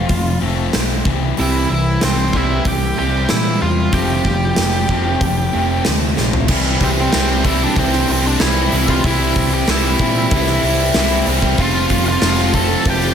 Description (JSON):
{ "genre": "quiet-loud alternative rock", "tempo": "94 BPM", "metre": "4/4", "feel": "straight", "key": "unclear", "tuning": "A4 = 441 Hz", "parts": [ { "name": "octave-fuzz lead guitar", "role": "melody", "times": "0.0-13.1 s", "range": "C4 to A5", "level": "-21 LUFS", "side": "equal", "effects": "distortion" }, { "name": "twelve-string electric guitar", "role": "arpeggios", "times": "0.0-6.5 s", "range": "F2 to G4", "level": "-26 LUFS", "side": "right 5 dB", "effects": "lush chorus" }, { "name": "thick fuzz guitar", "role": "riff", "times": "0.0-13.1 s", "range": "C3 to F4", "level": "-22 LUFS", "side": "left 9 dB", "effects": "distortion, slapback echo" }, { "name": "overdriven picked electric bass", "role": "bass", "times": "0.0-13.1 s", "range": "F1 to Bb2", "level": "-20 LUFS", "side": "equal", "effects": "none" }, { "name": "big rock drum kit", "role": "drums", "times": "0.1-13.1 s", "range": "crash cymbal, hi-hat, kick drum, snare drum, toms", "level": "-19 LUFS", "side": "right 1 dB", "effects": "none" }, { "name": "thick fuzz guitar", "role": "riff", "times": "1.4-13.1 s", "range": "F2 to C4", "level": "-22 LUFS", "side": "right 8 dB", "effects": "distortion, slapback echo" }, { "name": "distorted electric guitar", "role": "riff", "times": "6.5-13.1 s", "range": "C3 to F4", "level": "-23 LUFS", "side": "equal", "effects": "distortion, slapback echo" } ], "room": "moderate lush hall reverb, RT60 2.6 s", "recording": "big arena sound", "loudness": "-14 LUFS", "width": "side -8 dB against mid", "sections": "0.0-6.5 A section; 6.5-13.1 B section", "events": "drum fill 6.2-6.5", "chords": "0.0 F; 1.1 C; 3.9 Fadd9; 6.5 C; 11.6 F", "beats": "0.10 0.74 | 1.38 2.02 2.66 3.30 | 3.94 4.58 5.22 5.86 | 6.49 7.13 7.77 8.41 | 9.04 9.68 10.32 10.96 | 11.59 12.23 12.87" }